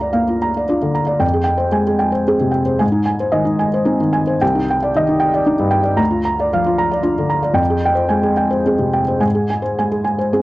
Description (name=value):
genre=neoclassical minimalist piano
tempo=112 BPM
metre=3/4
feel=rubato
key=unclear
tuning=A4 = 440 Hz
part: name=felt-muted upright piano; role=solo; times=0.0-10.4 s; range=C2 to Bb5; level=-14 LUFS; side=equal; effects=none
room=little or no reverb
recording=dry, gritty hardware recording, cassette tape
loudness=-14 LUFS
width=side -18 dB against mid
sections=0.0-10.4 A section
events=none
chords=0.0 Bb/D; 1.2 Fmadd9; 2.8 Ab; 4.4 Cmadd9; 6.0 Bb/D; 7.6 Fmadd9; 9.2 Ab